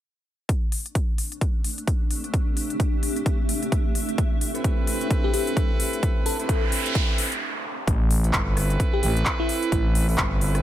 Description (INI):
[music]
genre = bass house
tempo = 130 BPM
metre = 4/4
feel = swing 59% on 16ths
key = A minor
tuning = A4 = 445 Hz
[part]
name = big-room dance drum kit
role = drums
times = 0.5-10.6 s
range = handclaps, hi-hat, rim click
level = -28 LUFS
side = left 1 dB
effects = overdrive
[part]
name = electronic kick drum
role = drums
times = 0.5-10.3 s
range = none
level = -23 LUFS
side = equal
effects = overdrive
[part]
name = granular cloud pad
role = texture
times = 1.3-7.4 s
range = A3 to E5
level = -31 LUFS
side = right 1 dB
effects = built-in reverb, sidechain pumping
[part]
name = bright horn section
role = stabs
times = 4.5-10.6 s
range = C4 to B4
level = -30 LUFS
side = right 2 dB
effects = sidechain pumping, low-pass filter, ping-pong delay
[part]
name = bell-like FM electric piano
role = melody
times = 5.2-10.0 s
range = E4 to A4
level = -30 LUFS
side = left 2 dB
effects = chorus, phaser, ping-pong delay
[part]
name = noise sweep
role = sound effects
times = 6.4-7.9 s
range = none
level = -30 LUFS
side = right 3 dB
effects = none
[part]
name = growling FM bass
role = bass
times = 7.9-10.6 s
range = G1 to A1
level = -22 LUFS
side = equal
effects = tube saturation, sidechain pumping
[sound]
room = light reverb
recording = none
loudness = -21 LUFS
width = side -12 dB against mid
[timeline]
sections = 0.5-7.9 A section; 7.9-10.6 B section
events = noise sweep 6.4-7.9; break 7.4-7.9; filter sweep on horn section 7.9-10.6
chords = 0.5 Amadd9